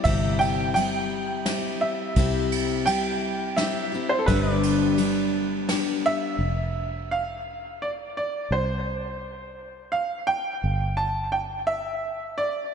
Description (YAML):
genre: honky-tonk and classic country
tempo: 85 BPM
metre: 3/4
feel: straight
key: unclear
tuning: A4 = 438 Hz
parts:
  - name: bright upright piano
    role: melody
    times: 0.0-12.7 s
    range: A4 to A5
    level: -27 LUFS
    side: right 2 dB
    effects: diffuse ambient delay
  - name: picked steel-string acoustic guitar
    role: accompaniment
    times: 0.0-6.4 s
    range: G2 to G4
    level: -26 LUFS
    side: left 3 dB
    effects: none
  - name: pedal steel guitar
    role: sustained chords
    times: 0.0-6.4 s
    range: B4 to D5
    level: -34 LUFS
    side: right 3 dB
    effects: lush chorus
  - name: fingered electric bass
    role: bass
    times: 0.1-12.5 s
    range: F1 to C2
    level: -28 LUFS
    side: equal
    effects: none
  - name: soft brush drum kit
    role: drums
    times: 0.1-5.9 s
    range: kick drum, ride cymbal, snare drum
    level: -30 LUFS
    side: right 1 dB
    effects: none
room: moderate lush hall reverb, RT60 3.0 s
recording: dreamy mix soaked in reverb, nothing above 11.0 kHz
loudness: -23 LUFS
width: side -7 dB against mid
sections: 0.0-6.4 A section; 6.4-12.7 B section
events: none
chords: 0.0 C; 4.3 G; 6.4 F5; 10.6 G5